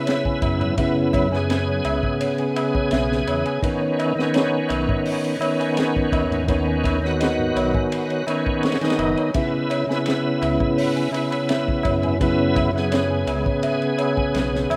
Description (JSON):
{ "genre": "trip hop", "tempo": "84 BPM", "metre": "4/4", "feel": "straight", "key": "C# minor", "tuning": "A4 = 442 Hz", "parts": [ { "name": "bright tonewheel organ", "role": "accompaniment", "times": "0.0-14.8 s", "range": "C#3 to G#4", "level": "-24 LUFS", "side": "equal", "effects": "overdrive, chorus vibrato, slow rotary speaker, harmonic tremolo, vintage 12-bit sampler grit" }, { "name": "celesta", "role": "arpeggios", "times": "0.0-14.8 s", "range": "C#5 to C#6", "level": "-30 LUFS", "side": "equal", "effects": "vintage 12-bit sampler grit, tape echo" }, { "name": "crunchy breakbeat drum kit", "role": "drums", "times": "0.1-14.8 s", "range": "hi-hat, kick drum, ride cymbal, snare drum", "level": "-29 LUFS", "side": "equal", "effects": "none" }, { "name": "tabla", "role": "percussion", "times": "0.1-14.8 s", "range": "none", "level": "-34 LUFS", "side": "equal", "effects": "none" }, { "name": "dark detuned saw bass", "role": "bass", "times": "0.4-14.8 s", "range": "F#1 to F#2", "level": "-29 LUFS", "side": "equal", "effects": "tube saturation" } ], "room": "moderate lush hall reverb, RT60 2.2 s", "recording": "rough home demo mix", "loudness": "-21 LUFS", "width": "mono", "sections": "0.0-14.8 A section", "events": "none", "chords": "0.0 C#m7; 3.6 Badd9; 9.3 C#m7", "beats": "0.06 | 0.78 1.49 2.21 2.92 | 3.63 4.35 5.06 5.78 | 6.49 7.21 7.92 8.63 | 9.35 10.06 10.78 11.49 | 12.21 12.92 13.63 14.35" }